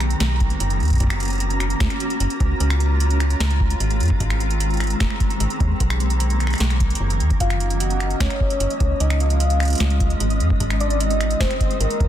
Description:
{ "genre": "IDM", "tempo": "150 BPM", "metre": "4/4", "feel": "straight", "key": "Gb lydian", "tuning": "A4 = 440 Hz", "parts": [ { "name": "granular cloud pad", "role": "sustained chords", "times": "0.0-12.1 s", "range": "Eb3 to G4", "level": "-26 LUFS", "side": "equal", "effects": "built-in reverb, sidechain pumping" }, { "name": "metallic FM bass", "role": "bass", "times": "0.0-12.1 s", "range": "Eb1 to F2", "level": "-20 LUFS", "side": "equal", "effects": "none" }, { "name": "booming analog drum machine", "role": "drums", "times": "0.0-12.1 s", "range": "finger snaps, hi-hat, snare drum", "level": "-28 LUFS", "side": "right 1 dB", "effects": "overdrive" }, { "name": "flickering grainy texture", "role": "texture", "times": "0.0-12.1 s", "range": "Eb5 to Bb5", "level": "-31 LUFS", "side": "right 1 dB", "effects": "built-in reverb" }, { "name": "electronic kick drum", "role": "drums", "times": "0.4-12.1 s", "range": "none", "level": "-22 LUFS", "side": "equal", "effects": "overdrive" }, { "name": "warm velvety synth lead", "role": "melody", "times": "7.4-12.1 s", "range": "Bb4 to Gb5", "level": "-26 LUFS", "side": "left 1 dB", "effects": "chorus, tremolo, vintage 12-bit sampler grit, digital delay" } ], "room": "light reverb, digital ambience", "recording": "dense, heavily limited modern master", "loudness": "-18 LUFS", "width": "side -11 dB against mid", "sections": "0.0-12.1 A section", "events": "none", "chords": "0.0 Cbmaj9; 1.0 Gbmaj9; 2.6 Dbmaj9; 4.2 Abmaj9; 5.8 Cbmaj9; 7.4 Gbmaj9; 9.0 Dbmaj9; 10.6 Abmaj9" }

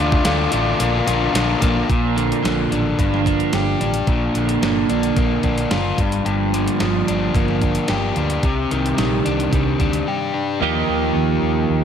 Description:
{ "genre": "indie rock", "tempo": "110 BPM", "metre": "4/4", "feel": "straight", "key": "Bb major", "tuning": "A4 = 444 Hz", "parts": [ { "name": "overdriven combo organ", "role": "sustained chords", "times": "0.0-1.9 s", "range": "F4 to D6", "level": "-28 LUFS", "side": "right 5 dB", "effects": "none" }, { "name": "overdriven electric guitar", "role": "riff", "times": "0.0-11.8 s", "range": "G2 to G4", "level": "-20 LUFS", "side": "left 4 dB", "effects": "none" }, { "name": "twelve-string electric guitar", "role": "riff", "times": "0.0-11.8 s", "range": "G2 to Eb5", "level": "-24 LUFS", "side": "right 12 dB", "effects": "analog chorus" }, { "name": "fingered electric bass", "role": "bass", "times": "0.0-11.8 s", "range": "Gb1 to Eb2", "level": "-24 LUFS", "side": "right 1 dB", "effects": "none" }, { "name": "crisp 8-bit digital drum machine", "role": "drums", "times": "0.1-10.1 s", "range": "hi-hat, kick drum, snare drum", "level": "-23 LUFS", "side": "right 1 dB", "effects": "none" } ], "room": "moderate concert hall reverb, RT60 2.5 s", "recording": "big arena sound", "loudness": "-16 LUFS", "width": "side -8 dB against mid", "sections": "0.0-1.9 A section; 1.9-10.6 B section; 10.6-11.8 C section", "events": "break 10.1-10.6", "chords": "0.0 Dm; 0.8 Bbmaj7; 1.9 Bb; 3.0 Gm7; 4.1 Bb; 6.0 Gm7; 8.4 Cmadd9; 10.6 Ebadd9" }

